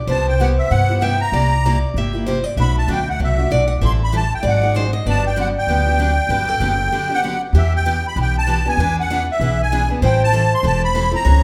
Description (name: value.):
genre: acoustic string swing (jazz manouche).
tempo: 193 BPM.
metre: 4/4.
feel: swing 58% on 8ths.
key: unclear.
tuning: A4 = 440 Hz.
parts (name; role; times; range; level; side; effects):
picked steel-string acoustic guitar; second line; 0.0-11.4 s; G4 to F#5; -26 LUFS; equal; none.
upright bass; bass; 0.0-11.4 s; E1 to G2; -20 LUFS; equal; none.
musette accordion; melody; 0.1-11.4 s; E5 to C6; -22 LUFS; equal; none.
picked steel-string acoustic guitar; accompaniment; 0.1-11.4 s; B2 to A4; -27 LUFS; equal; none.
room: wet large studio reverb, RT60 1.3 s.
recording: band playing live in one room.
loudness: -18 LUFS.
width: mono.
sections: 0.0-7.5 A section; 7.5-11.4 B section.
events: none.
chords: 0.1 Cmaj7; 1.3 C9; 2.6 Bm7; 3.8 Am7; 4.4 Ab7; 5.1 Gmaj7; 7.5 Em7; 8.8 E7; 10.0 Am7.